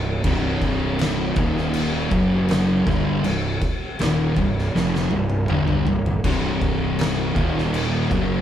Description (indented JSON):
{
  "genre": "stoner and doom metal",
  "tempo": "80 BPM",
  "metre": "4/4",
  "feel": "straight",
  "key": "C minor",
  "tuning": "A4 = 440 Hz",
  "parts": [
    { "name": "fuzz guitar", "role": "riff", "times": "0.0-8.4 s", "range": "C2 to G3", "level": "-22 LUFS", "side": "equal", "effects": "distortion" },
    { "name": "fuzz fingered electric bass", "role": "bass", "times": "0.0-8.4 s", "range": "C1 to G1", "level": "-25 LUFS", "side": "equal", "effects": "overdrive" },
    { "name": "oversized low-tuned drum kit", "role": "drums", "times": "0.2-8.3 s", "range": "crash cymbal, kick drum, snare drum, splash cymbal, toms", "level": "-24 LUFS", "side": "equal", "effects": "none" }
  ],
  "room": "moderate studio reverb, RT60 0.6 s",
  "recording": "band playing live in one room",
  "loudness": "-19 LUFS",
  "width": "side -10 dB against mid",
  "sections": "0.0-8.4 A section",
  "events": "drum fill 4.7-6.2",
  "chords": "0.0 C5; 1.4 Eb5; 2.1 F#5; 2.9 Cm; 7.4 Eb5"
}